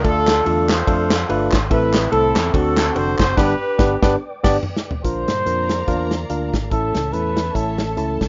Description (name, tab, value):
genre	uptempo gospel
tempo	144 BPM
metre	4/4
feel	swing 56% on 8ths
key	unclear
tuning	A4 = 440 Hz
part	warm horn section	melody	0.0-4.2 s	C4 to C5	-22 LUFS	equal	none
part	barky tine electric piano	accompaniment	0.0-8.2 s	G2 to D5	-24 LUFS	equal	none
part	mellow tonewheel organ	sustained chords	0.0-8.3 s	D3 to E6	-36 LUFS	equal	none
part	fingered electric bass	bass	0.0-8.3 s	F1 to G2	-27 LUFS	equal	none
part	natural country drum kit	drums	0.0-8.3 s	crash cymbal, hi-hat, kick drum, ride cymbal, snare drum, toms	-23 LUFS	equal	none
part	group handclap	percussion	0.3-3.3 s	none	-28 LUFS	equal	none
part	breathy trumpet	melody	5.0-8.2 s	A4 to C5	-26 LUFS	equal	none
part	clear studio string section	sustained chords	5.0-8.3 s	A4 to Bb5	-35 LUFS	equal	none
room	light reverb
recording	rough home demo mix, nothing above 7.5 kHz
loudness	-19 LUFS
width	mono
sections	0.0-5.0 A section; 5.0-8.3 B section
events	band accent 3.4-5.0; drum fill 4.2-5.0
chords	0.0 Dm; 1.7 Am; 2.5 D7; 3.4 G; 5.0 Bb; 6.7 A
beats	| 0.04 0.46 0.88 1.29 | 1.71 2.13 2.54 2.96 | 3.38 3.79 4.21 4.62 | 5.04 5.46 5.88 6.30 | 6.71 7.13 7.55 7.97